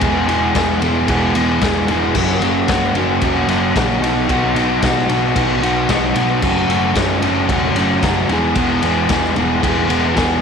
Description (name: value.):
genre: indie rock.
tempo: 112 BPM.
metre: 4/4.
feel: straight.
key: unclear.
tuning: A4 = 440 Hz.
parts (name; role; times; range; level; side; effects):
crunchy overdriven guitar; riff; 0.0-10.4 s; E2 to G#4; -16 LUFS; equal; none.
picked electric bass; bass; 0.0-10.4 s; E1 to B1; -24 LUFS; right 2 dB; none.
raw garage drum kit; drums; 0.0-10.3 s; crash cymbal, kick drum, ride cymbal, snare drum; -19 LUFS; left 3 dB; none.
room: light reverb, small room ambience.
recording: 1960s-style stereo.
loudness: -14 LUFS.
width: side -6 dB against mid.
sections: 0.0-10.4 A section.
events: none.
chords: 0.0 E; 2.2 F#; 4.0 B; 6.4 F#m; 8.3 E.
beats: | 0.02 0.55 1.09 1.62 | 2.15 2.69 3.22 3.76 | 4.29 4.83 5.36 5.89 | 6.43 6.96 7.50 8.03 | 8.56 9.10 9.63 10.16.